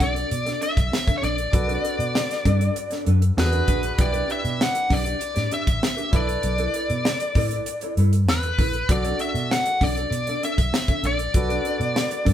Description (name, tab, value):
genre	polished 1980s jazz-funk pop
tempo	98 BPM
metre	4/4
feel	straight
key	B minor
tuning	A4 = 440 Hz
part	nasal lead guitar with a parked wah	melody	0.0-12.3 s	B4 to F#5	-25 LUFS	left 2 dB	overdrive
part	clear grand piano	accompaniment	0.0-12.3 s	D4 to D5	-33 LUFS	right 2 dB	none
part	mellow electric guitar	riff	0.0-12.3 s	D4 to D5	-31 LUFS	right 1 dB	none
part	vintage muted fingered electric bass	bass	0.0-12.3 s	A1 to B2	-24 LUFS	equal	none
part	tight funk drum kit	drums	0.0-12.3 s	hi-hat, kick drum, snare drum	-24 LUFS	equal	none
room	moderate studio reverb, RT60 0.9 s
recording	band playing live in one room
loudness	-20 LUFS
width	side -10 dB against mid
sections	0.0-12.3 A section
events	none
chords	0.0 Bm9; 3.4 E7; 4.0 A9sus4/B (rootless); 6.1 G69/B (rootless); 8.9 Bm9